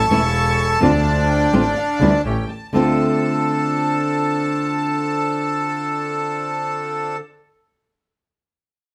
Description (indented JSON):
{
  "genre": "tango",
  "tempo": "126 BPM",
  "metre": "4/4",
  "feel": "rubato",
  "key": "D minor",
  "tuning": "A4 = 440 Hz",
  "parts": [
    { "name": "bandoneon", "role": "melody", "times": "0.0-7.2 s", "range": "D4 to A5", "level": "-23 LUFS", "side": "equal", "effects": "plate reverb" },
    { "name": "warm studio violin section", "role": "second line", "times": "0.0-7.2 s", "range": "F5 to C#6", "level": "-34 LUFS", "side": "equal", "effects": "none" },
    { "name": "bandoneon", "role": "stabs", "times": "0.0-7.2 s", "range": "A3 to G4", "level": "-34 LUFS", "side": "equal", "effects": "none" },
    { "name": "clear double bass", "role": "bass", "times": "0.0-2.9 s", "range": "E1 to D2", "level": "-23 LUFS", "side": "equal", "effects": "none" },
    { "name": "nylon-string guitar", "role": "accompaniment", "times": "0.1-7.2 s", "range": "D3 to F4", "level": "-23 LUFS", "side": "equal", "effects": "none" }
  ],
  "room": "moderate studio reverb, RT60 0.6 s",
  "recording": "none",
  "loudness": "-19 LUFS",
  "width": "mono",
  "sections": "0.0-2.7 A section; 2.7-6.5 B section",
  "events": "none",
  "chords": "0.0 A; 0.8 Dm7; 2.2 A7; 2.7 Dm7"
}